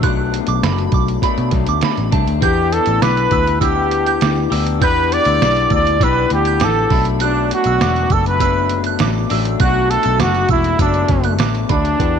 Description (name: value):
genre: indie pop, bedroom pop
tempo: 100 BPM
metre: 4/4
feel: straight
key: unclear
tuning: A4 = 442 Hz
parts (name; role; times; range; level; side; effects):
- soft synth bell; second line; 0.0-11.8 s; A5 to G6; -24 LUFS; right 12 dB; wide subtle chorus, tape echo
- electric guitar through a small old amp; accompaniment; 0.0-12.2 s; B2 to G4; -20 LUFS; left 16 dB; wide subtle chorus, vibrato effect
- vintage muted picked electric bass; bass; 0.0-12.2 s; E1 to B2; -19 LUFS; equal; none
- lo-fi sampler-style drum kit; drums; 0.0-12.1 s; hi-hat, kick drum, snare drum; -20 LUFS; right 3 dB; none
- breathy trumpet; melody; 2.4-12.2 s; D4 to D5; -17 LUFS; right 2 dB; analog chorus, tape echo
room: light reverb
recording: 1960s-style stereo with parts hard left and right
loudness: -13 LUFS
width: side -7 dB against mid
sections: 0.0-12.0 A section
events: none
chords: 0.0 Bm7; 2.4 Em7; 6.9 Bm7